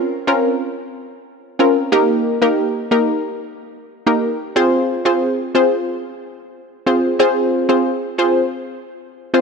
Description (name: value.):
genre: dancehall.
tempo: 91 BPM.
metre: 4/4.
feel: straight.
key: F minor.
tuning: A4 = 439 Hz.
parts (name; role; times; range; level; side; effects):
analog pluck; solo; 0.3-9.4 s; Bb3 to C5; -15 LUFS; equal; chorus.
room: light reverb, digital ambience.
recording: none.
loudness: -15 LUFS.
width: side -5 dB against mid.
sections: 0.0-9.4 A section.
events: none.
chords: 0.0 Bbmadd9; 1.9 Eb; 4.6 Fm.